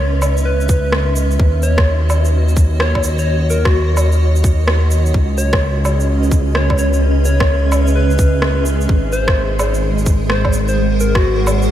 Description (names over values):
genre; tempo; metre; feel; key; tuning
future garage; 128 BPM; 4/4; swing 65% on 16ths; C# dorian; A4 = 440 Hz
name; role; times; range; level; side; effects
soft struck synth lead; melody; 0.0-11.5 s; F#4 to C#5; -22 LUFS; left 1 dB; chorus, analog delay
granular cloud pad; sustained chords; 0.0-11.7 s; G#3 to F#5; -21 LUFS; right 2 dB; built-in reverb, sidechain pumping
dark detuned saw bass; bass; 0.0-11.7 s; G#1 to D#2; -15 LUFS; equal; sidechain pumping
electronic shaker, woodblock and rim click; drums; 0.2-11.7 s; none; -22 LUFS; equal; overdrive
electronic kick drum; drums; 0.7-11.2 s; none; -15 LUFS; equal; none
room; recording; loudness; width
light reverb, digital ambience; none; -12 LUFS; side -11 dB against mid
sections
0.0-11.7 A section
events
none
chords
0.0 C#m7; 1.4 D#m7; 5.1 C#m7; 8.9 G#7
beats
0.46 0.93 | 1.39 1.86 2.33 2.80 | 3.27 3.74 4.21 4.67 | 5.14 5.61 6.08 6.55 | 7.02 7.49 7.96 8.43 | 8.89 9.36 9.83 10.30 | 10.77 11.24 11.71